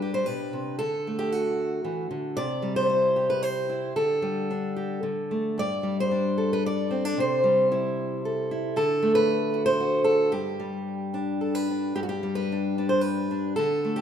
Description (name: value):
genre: folk, solo fingerstyle acoustic guitar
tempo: 113 BPM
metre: 3/4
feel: rubato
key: G major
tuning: A4 = 440 Hz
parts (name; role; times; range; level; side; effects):
- fingerpicked steel-string acoustic guitar; solo; 0.0-14.0 s; G2 to D5; -23 LUFS; equal; none
room: moderate concert hall reverb, RT60 1.8 s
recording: minimal, uncompressed stereo recording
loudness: -23 LUFS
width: side -8 dB against mid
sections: 0.0-12.0 A section; 12.0-14.0 A section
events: none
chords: 0.0 G; 0.8 D; 2.4 C; 4.0 Dsus4; 5.0 D5; 5.6 Gsus2; 7.2 C6; 8.8 D; 10.3 G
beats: 0.28 | 0.80 1.33 1.85 | 2.37 2.89 3.42 | 3.96 4.49 5.03 | 5.57 6.11 6.65 | 7.18 7.71 8.24 | 8.77 9.28 9.80 | 10.33 10.86 11.41 | 11.96 12.50 13.04 | 13.57